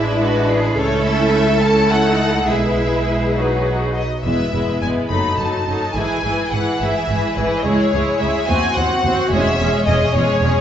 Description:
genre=quick classical-period movement for string orchestra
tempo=67-74 BPM (dotted quarters)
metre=6/8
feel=rubato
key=E major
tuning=A4 = 441 Hz
part: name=clear studio violin section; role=melody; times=0.0-10.6 s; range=B4 to B5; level=-22 LUFS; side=left 2 dB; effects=none
part: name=warm studio violin section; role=second line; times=0.0-10.6 s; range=D#4 to C#5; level=-22 LUFS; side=left 2 dB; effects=none
part: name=bright studio viola section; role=accompaniment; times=0.0-10.6 s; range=E3 to Gb4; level=-21 LUFS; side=right 1 dB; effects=none
part: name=clear studio cello section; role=bass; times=0.0-10.5 s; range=C#2 to A4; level=-23 LUFS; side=right 2 dB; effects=none
part: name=rich studio double bass section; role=bass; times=0.0-10.5 s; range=E1 to Eb2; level=-22 LUFS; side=right 2 dB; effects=none
room=wet recital hall reverb, RT60 1.7 s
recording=recorded in a church or concert hall, nothing above 7.7 kHz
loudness=-15 LUFS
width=side -9 dB against mid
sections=0.0-4.3 A section; 4.3-10.6 B section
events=none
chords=0.0 E7/A; 0.8 A/C#; 2.5 E/B; 3.4 B; 4.3 E; 5.1 D#dim/F#; 6.0 E/G#; 7.7 C#m; 8.5 Cdim/Eb; 9.3 C#m/E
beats=| 0.79 1.62 | 2.48 3.37 | 4.25 5.11 | 5.96 6.81 | 7.66 8.49 | 9.32 10.14

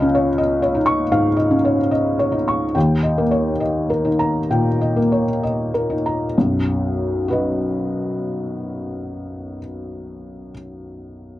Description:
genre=neoclassical minimalist piano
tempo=63-83 BPM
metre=4/4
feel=rubato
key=B major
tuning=A4 = 440 Hz
part: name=felt-muted upright piano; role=solo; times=0.0-11.4 s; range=B1 to C#6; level=-18 LUFS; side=left 1 dB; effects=none
room=light reverb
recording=dry, close 1970s-style studio recording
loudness=-17 LUFS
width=side -15 dB against mid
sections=0.0-6.4 A section; 6.4-10.0 B section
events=slowing down 0.0-6.4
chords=0.0 C#add9; 2.7 D#; 6.4 B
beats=0.38 1.11 1.91 | 2.75 3.62 4.51 5.42 | 6.35 7.26 8.16 9.06

